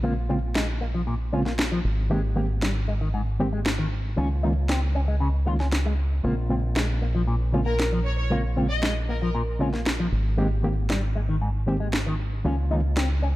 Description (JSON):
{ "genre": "nu-disco, nu disco", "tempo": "116 BPM", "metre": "4/4", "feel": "straight", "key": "Bb dorian", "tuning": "A4 = 440 Hz", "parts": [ { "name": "barky reed electric piano", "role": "accompaniment", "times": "0.0-12.8 s", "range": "Db3 to G4", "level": "-29 LUFS", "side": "equal", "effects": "overdrive, fast tremolo, digital delay" }, { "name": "electric guitar with an envelope filter", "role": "riff", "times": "0.0-13.3 s", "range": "Ab2 to F4", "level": "-30 LUFS", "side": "left 2 dB", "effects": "wide subtle chorus, low-pass filter, digital delay" }, { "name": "fingered electric bass with an envelope filter", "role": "bass", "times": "0.0-13.4 s", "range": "Ab1 to Db2", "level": "-25 LUFS", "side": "equal", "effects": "none" }, { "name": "electronic snare drum", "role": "drums", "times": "0.6-13.1 s", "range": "none", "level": "-30 LUFS", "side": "equal", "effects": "overdrive, studio reverb" }, { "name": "warm studio violin section", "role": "melody", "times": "7.7-9.3 s", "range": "Bb4 to Eb5", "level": "-30 LUFS", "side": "left 1 dB", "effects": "dub echo" } ], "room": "light reverb, digital ambience", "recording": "dark, warm production", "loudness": "-22 LUFS", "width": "side -17 dB against mid", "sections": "0.0-13.4 A section", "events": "none", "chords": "0.0 Bbm7; 1.8 Abmaj7; 4.2 Db6; 6.2 Bbm7; 10.1 Abmaj7; 12.4 Db6" }